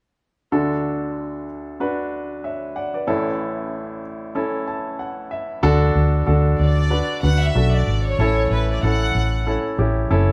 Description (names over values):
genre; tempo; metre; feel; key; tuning
pop; 94 BPM; 4/4; swing 56% on 16ths; D major; A4 = 440 Hz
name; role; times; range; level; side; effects
clear baby grand piano; accompaniment; 0.5-10.3 s; A1 to A5; -25 LUFS; equal; none
vintage muted fingered electric bass; bass; 5.6-10.3 s; F#1 to D2; -20 LUFS; equal; none
rich chamber violin section; melody; 6.6-9.4 s; B4 to F#5; -27 LUFS; equal; none
room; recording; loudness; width
moderate large studio reverb, RT60 0.9 s; band playing live in one room; -21 LUFS; mono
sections
0.5-5.6 A section; 5.6-10.3 B section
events
grand piano fill 4.4-5.6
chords
0.5 D; 3.1 A; 5.6 D; 8.2 A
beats
| 0.52 1.16 1.80 2.44 | 3.08 3.72 4.36 5.00 | 5.63 6.27 6.91 7.55 | 8.19 8.83 9.46 10.10